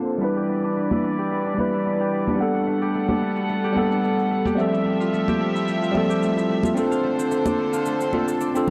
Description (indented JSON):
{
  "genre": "sunset chillout",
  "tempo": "110 BPM",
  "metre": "4/4",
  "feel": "swing 54% on 16ths",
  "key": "unclear",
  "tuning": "A4 = 440 Hz",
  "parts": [
    { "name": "tine electric piano", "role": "accompaniment", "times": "0.0-8.7 s", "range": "F3 to F#5", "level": "-25 LUFS", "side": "equal", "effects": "analog delay" },
    { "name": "clear studio string section", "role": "sustained chords", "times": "0.0-8.7 s", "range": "D3 to F#5", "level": "-29 LUFS", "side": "equal", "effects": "vintage 12-bit sampler grit" },
    { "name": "cabasa", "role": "drums", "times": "0.1-8.7 s", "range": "none", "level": "-46 LUFS", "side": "equal", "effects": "overdrive, small room reverb" },
    { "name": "concert harp", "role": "arpeggios", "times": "0.2-8.7 s", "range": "A3 to A4", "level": "-32 LUFS", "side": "equal", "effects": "analog delay" },
    { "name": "congas", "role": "percussion", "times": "0.9-8.7 s", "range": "none", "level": "-30 LUFS", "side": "equal", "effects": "none" }
  ],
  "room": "light reverb, studio reverb",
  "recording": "dry, gritty hardware recording, low-pass filter",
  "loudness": "-22 LUFS",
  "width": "mono",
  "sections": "0.0-8.7 A section",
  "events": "filter sweep on drum 0.0-8.7; filter sweep on string section 0.0-8.7; filter sweep 0.0-8.7",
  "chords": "0.2 Em7; 2.4 Gmaj9; 4.6 Fmaj9; 6.8 Bbmaj9 (rootless)"
}